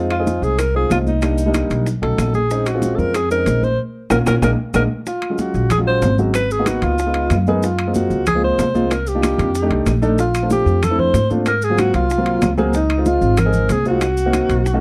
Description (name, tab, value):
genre	Afro-Cuban jazz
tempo	188 BPM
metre	4/4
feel	straight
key	Bb minor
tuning	A4 = 443 Hz
part	warm concert grand piano	accompaniment	0.0-14.8 s	F#3 to F5	-23 LUFS	equal	none
part	upright bass	bass	0.0-14.8 s	Ab1 to Ab2	-22 LUFS	equal	none
part	mellow alto saxophone	melody	0.1-14.8 s	Eb4 to C5	-22 LUFS	equal	plate reverb
part	claves	percussion	0.1-14.5 s	none	-38 LUFS	equal	none
part	congas	percussion	0.1-14.8 s	none	-28 LUFS	equal	none
part	timbales	percussion	0.1-14.7 s	none	-30 LUFS	equal	none
part	bongos	percussion	0.3-14.8 s	none	-30 LUFS	equal	none
part	maracas	percussion	0.3-14.8 s	none	-39 LUFS	equal	none
room	light reverb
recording	dark, warm production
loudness	-17 LUFS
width	mono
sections	0.0-5.1 A section; 5.1-14.8 B section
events	band accent 3.8-5.1; drum fill 4.3-5.1; grand piano fill 7.1-7.6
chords	0.0 Fm7; 1.2 Cm7; 1.9 B9; 2.5 Bbm11; 4.4 Bb7; 5.1 Gbmaj9#11; 6.3 Abm9; 7.0 Db7; 7.6 Gbmaj9#11; 8.9 Cm11; 9.5 F13; 10.2 Bbmaj9; 11.5 Ab13; 12.7 Dbmaj9; 14.0 Cm7b5